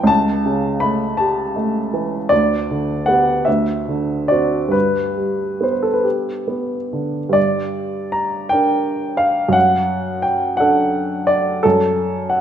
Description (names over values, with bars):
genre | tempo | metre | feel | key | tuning
classical, romantic nocturne for solo piano | 44-59 BPM (dotted quarters) | 6/8 | rubato | G major | A4 = 440 Hz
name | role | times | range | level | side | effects
warm baby grand piano | solo | 0.0-12.4 s | C#2 to B5 | -16 LUFS | equal | none
room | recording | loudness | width
wet recital hall reverb, RT60 1.5 s | none | -16 LUFS | side -9 dB against mid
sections
0.0-7.4 A section; 7.4-12.4 B section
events
none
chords
0.1 A7/C#; 2.3 G/D; 3.5 D7; 4.7 G; 7.4 Gm; 9.6 D/F#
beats
| 0.09 1.19 | 2.31 3.47 | 4.74 6.04 | 7.36 8.51 | 9.55 10.60 | 11.64